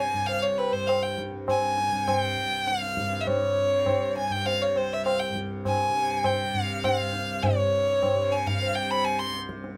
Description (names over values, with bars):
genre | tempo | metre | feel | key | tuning
indian classical, Hindustani | 101 BPM | 7/4 | straight | unclear | A4 = 440 Hz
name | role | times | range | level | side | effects
clear violin | melody | 0.0-9.3 s | B4 to C6 | -28 LUFS | equal | none
tanpura | drone | 0.0-9.8 s | C2 to C3 | -36 LUFS | equal | none
tabla | percussion | 0.1-9.8 s | none | -31 LUFS | equal | none
room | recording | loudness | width
light reverb | none | -26 LUFS | mono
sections
0.0-9.8 A section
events
none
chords
none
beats
0.28 0.88 1.48 2.07 2.67 | 3.27 3.87 4.46 5.05 5.65 6.24 6.83 | 7.43 8.02 8.61 9.20